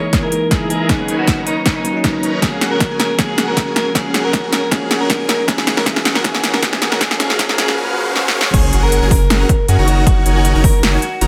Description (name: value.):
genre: future bass.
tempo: 157 BPM.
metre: 4/4.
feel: swing 53% on 16ths, half-time.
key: F# major.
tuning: A4 = 443 Hz.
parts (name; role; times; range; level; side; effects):
electric guitar through a small old amp; melody; 0.0-11.3 s; D#4 to C#5; -24 LUFS; equal; sidechain pumping, tape echo.
bell-like tine electric piano; accompaniment; 0.0-8.6 s; E3 to D#4; -26 LUFS; equal; sidechain pumping.
dense compressed supersaw; riff; 0.1-11.3 s; C#4 to A#5; -23 LUFS; equal; sidechain pumping, low-pass filter.
big-room dance drum kit; drums; 0.1-11.3 s; crash cymbal, hi-hat, snare drum; -20 LUFS; equal; overdrive.
electronic kick drum; drums; 0.1-10.7 s; none; -19 LUFS; equal; overdrive.
riser, swell and sub drop; sound effects; 5.3-10.1 s; none; -29 LUFS; equal; none.
saturated sub bass; bass; 8.5-11.3 s; F#1 to F#2; -17 LUFS; equal; sidechain pumping.
room: light reverb.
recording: high-pass filter.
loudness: -15 LUFS.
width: mono.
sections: 0.0-8.5 A section; 8.5-11.3 B section.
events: build-up 0.0-8.5; drum fill 0.0-7.8, 8.2-8.5; filter sweep 0.0-8.5; swell 7.8-8.5; drop 8.5-11.3; impact 8.5-10.1.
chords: 0.0 F#13 (rootless); 0.9 Bmaj9; 2.4 F#maj9; 5.3 F#9; 7.0 F#maj9; 9.9 D#m7/F#.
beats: 0.13 0.51 | 0.89 1.28 1.66 2.04 | 2.42 2.81 3.19 3.57 | 3.95 4.33 4.72 5.10 | 5.48 5.86 6.25 6.63 | 7.01 7.39 7.77 8.16 | 8.54 8.92 9.30 9.68 | 10.07 10.45 10.83 11.21.